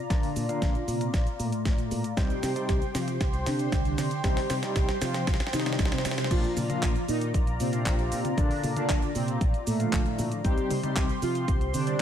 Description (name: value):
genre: italo disco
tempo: 116 BPM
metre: 4/4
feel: straight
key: Bb major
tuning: A4 = 440 Hz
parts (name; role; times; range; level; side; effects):
- mellow synth brass; melody; 0.0-12.0 s; A2 to G4; -31 LUFS; right 1 dB; chorus, phaser, ping-pong delay
- warm analog pad; sustained chords; 0.0-12.0 s; C4 to C6; -34 LUFS; equal; chorus
- overdriven tine electric piano; stabs; 0.1-12.0 s; Bb2 to F5; -36 LUFS; left 4 dB; fast tremolo
- fingered electric bass with an envelope filter; bass; 0.1-12.0 s; Bb1 to C3; -32 LUFS; equal; none
- clean 12-bit digital drum machine; drums; 0.1-12.0 s; cabasa, crash cymbal, handclaps, hi-hat, snare drum, toms; -34 LUFS; equal; high-pass filter on hats, high-pass filter on snare, high-pass filter on toms, high-pass filter on perc, high-pass filter on cymbals
- electronic kick drum; drums; 0.1-12.0 s; none; -27 LUFS; equal; none
room: light reverb, digital ambience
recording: none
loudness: -25 LUFS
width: side -9 dB against mid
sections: 0.0-6.3 A section; 6.3-12.0 B section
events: drum fill 0.0-6.3; filter sweep on analog polysynth 0.0-6.3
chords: 0.0 Bb; 2.2 Cm; 6.3 Bb; 10.4 Cm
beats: | 0.10 0.62 1.14 1.65 | 2.17 2.69 3.21 3.72 | 4.24 4.76 5.27 5.79 | 6.31 6.83 7.34 7.86 | 8.38 8.89 9.41 9.93 | 10.45 10.96 11.48 12.00